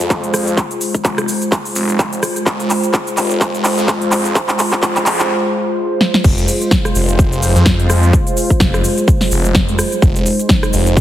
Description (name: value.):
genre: bass house.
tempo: 127 BPM.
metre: 4/4.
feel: swing 57% on 16ths.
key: F minor.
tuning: A4 = 440 Hz.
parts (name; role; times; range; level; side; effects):
sweeping resonant pad; sustained chords; 0.0-11.0 s; Ab3 to C5; -18 LUFS; equal; chorus, sidechain pumping.
phased detuned saw bass; bass; 0.0-11.0 s; F1 to F2; -17 LUFS; equal; phaser, tube saturation, sidechain pumping, high-pass filter.
big-room dance drum kit; drums; 0.0-11.0 s; cabasa, crash cymbal, handclaps, hi-hat, rim click, snare drum; -17 LUFS; equal; overdrive.
electronic kick drum; drums; 0.1-11.0 s; none; -14 LUFS; equal; overdrive, high-pass filter on kick.
room: light reverb, digital ambience.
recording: heavily compressed radio sound, multiband compression.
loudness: -12 LUFS.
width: side -12 dB against mid.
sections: 0.0-6.2 A section; 6.2-11.0 B section.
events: build-up 0.0-6.2; drum fill 0.0-5.3, 6.0; drop 6.2-11.0.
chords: 0.0 Fm.